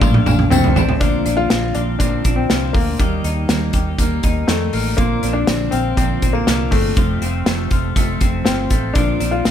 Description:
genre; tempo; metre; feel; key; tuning
jangly indie pop; 121 BPM; 4/4; straight; Bb major; A4 = 438 Hz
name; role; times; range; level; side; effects
warm upright piano; melody; 0.0-9.5 s; A3 to F5; -22 LUFS; left 4 dB; none
picked steel-string acoustic guitar; accompaniment; 0.0-9.5 s; F2 to Eb4; -25 LUFS; right 6 dB; none
twelve-string electric guitar; arpeggios; 0.0-9.5 s; F2 to G4; -24 LUFS; left 4 dB; spring reverb
vintage muted fingered electric bass; bass; 0.0-9.5 s; F1 to F2; -22 LUFS; equal; none
loose indie drum kit; drums; 0.0-9.5 s; hi-hat, kick drum, snare drum, toms; -18 LUFS; equal; none
tambourine; percussion; 0.0-0.9 s; none; -31 LUFS; left 10 dB; none
room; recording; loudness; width
light reverb; none; -15 LUFS; side -9 dB against mid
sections
0.0-1.0 A section; 1.0-9.5 B section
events
drum fill 0.0-1.0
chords
0.0 Bbmaj7; 1.0 Bbadd9; 3.0 Eb; 5.0 Bbadd9; 7.0 F; 9.0 Bbadd9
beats
0.02 0.52 | 1.01 1.51 2.00 2.50 | 3.00 3.49 3.99 4.49 | 4.98 5.48 5.98 6.47 | 6.97 7.47 7.96 8.46 | 8.96 9.46

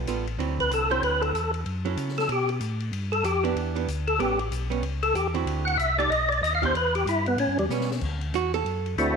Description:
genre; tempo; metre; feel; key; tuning
soul jazz organ trio; 189 BPM; 4/4; swing 62% on 8ths; D mixolydian; A4 = 439 Hz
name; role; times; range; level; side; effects
archtop guitar, miked and amplified; accompaniment; 0.0-8.9 s; D3 to A4; -30 LUFS; right 10 dB; none
mellow tonewheel organ; bass; 0.0-9.2 s; A1 to C#3; -29 LUFS; left 1 dB; slow rotary speaker
open jazz drum kit; drums; 0.1-9.1 s; crash cymbal, hi-hat, kick drum, ride cymbal, snare drum; -38 LUFS; left 8 dB; none
percussive tonewheel organ; melody; 0.6-9.2 s; G3 to F#5; -24 LUFS; left 1 dB; slow rotary speaker, overdrive, chorus vibrato, slapback echo
room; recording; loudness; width
moderate echo chamber reverb, RT60 1.3 s; 1960s-style stereo with parts hard left and right; -23 LUFS; side -5 dB against mid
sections
0.0-8.0 A section; 8.0-9.2 A section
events
tonewheel organ solo 0.0-8.0; drum fill 7.7-8.0; hollow-body jazz guitar solo 8.0-9.2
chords
0.4 D9; 1.7 F#m7; 2.3 Gadd9; 2.9 Em7; 4.2 A9; 5.5 D9; 6.1 Baug; 6.7 Em; 7.4 A9; 8.0 D9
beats
0.07 | 0.39 0.71 1.03 1.34 | 1.66 1.98 2.30 2.62 | 2.93 3.25 3.57 3.88 | 4.20 4.52 4.84 5.16 | 5.47 5.79 6.11 6.43 | 6.74 7.06 7.38 7.70 | 8.02 8.33 8.65 8.97

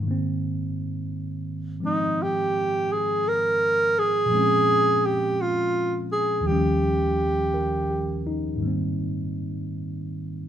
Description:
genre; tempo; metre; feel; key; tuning
jazz ballad; 56 BPM; 4/4; swing 66% on 8ths; Ab major; A4 = 440 Hz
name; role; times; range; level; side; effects
tine electric piano; accompaniment; 0.0-10.5 s; Eb2 to Bb4; -26 LUFS; equal; overdrive
warm alto saxophone; melody; 1.9-8.3 s; Eb4 to Bb4; -22 LUFS; right 1 dB; none
room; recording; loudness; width
moderate large studio reverb, RT60 0.8 s; minimal, uncompressed stereo recording; -22 LUFS; side -10 dB against mid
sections
0.0-8.6 A section; 8.6-10.5 B section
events
none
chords
0.0 Abadd9; 4.3 Bbm7; 6.4 Eb7; 8.6 Abmaj9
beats
| 0.04 1.10 2.17 3.23 | 4.30 5.37 6.45 7.53 | 8.62 9.69

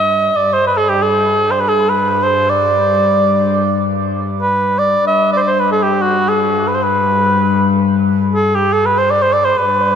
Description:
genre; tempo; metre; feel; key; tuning
Persian modal ensemble; free time; none; none; G dastgah chahargah; A4 = 440 Hz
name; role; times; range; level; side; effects
mellow cor anglais; melody; 0.0-10.0 s; F#4 to E5-50c; -13 LUFS; right 1 dB; diffuse ambient delay
rich studio cello section; drone; 0.0-10.0 s; G2; -18 LUFS; left 3 dB; none
room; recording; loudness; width
wet huge ambient reverb, RT60 4.5 s; dreamy mix soaked in reverb; -12 LUFS; side -8 dB against mid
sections
0.0-10.0 A section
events
none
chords
none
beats
free time

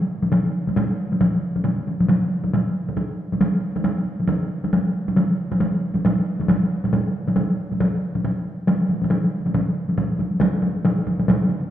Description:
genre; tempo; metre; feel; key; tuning
japanese traditional; 137 BPM; 4/4; swing 60% on 16ths; none; none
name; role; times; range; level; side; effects
taiko ensemble; percussion; 0.2-11.7 s; none; -19 LUFS; equal; none
room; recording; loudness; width
wet recital hall reverb, RT60 1.7 s; recorded in a church or concert hall; -19 LUFS; side -11 dB against mid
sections
0.0-10.0 A section; 10.0-11.7 B section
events
none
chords
none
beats
0.33 0.77 | 1.21 1.66 2.10 2.54 | 2.98 3.42 3.86 4.30 | 4.74 5.18 5.62 6.06 | 6.50 6.93 7.37 7.80 | 8.24 8.68 9.11 9.55 | 9.98 10.41 10.85 11.28

